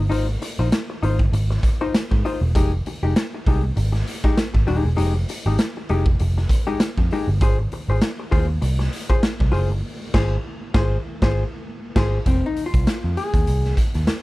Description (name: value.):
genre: funk.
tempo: 99 BPM.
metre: 4/4.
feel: swing 56% on 16ths.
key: F minor.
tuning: A4 = 439 Hz.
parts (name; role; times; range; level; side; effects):
vintage muted picked electric bass; bass; 0.0-14.1 s; Eb1 to Ab2; -20 LUFS; equal; none.
vintage hollow-body jazz guitar; accompaniment; 0.1-13.7 s; Ab3 to C5; -25 LUFS; left 3 dB; none.
raw garage drum kit; drums; 0.1-14.2 s; crash cymbal, hi-hat, kick drum, snare drum; -22 LUFS; equal; none.
room: little or no reverb.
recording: none.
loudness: -18 LUFS.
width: side -19 dB against mid.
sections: 0.0-12.3 A section; 12.3-14.2 B section.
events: band accent 9.8-12.3; hollow-body jazz guitar solo 12.3-14.2.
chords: 0.0 Ab6; 2.5 Fm9; 7.4 Ab6; 12.3 Fm7.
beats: | 0.11 0.72 1.33 1.94 | 2.55 3.15 3.76 4.37 | 4.98 5.59 6.20 6.81 | 7.41 8.02 8.63 9.23 | 9.84 10.45 11.06 11.66 | 12.27 12.88 13.48 14.09.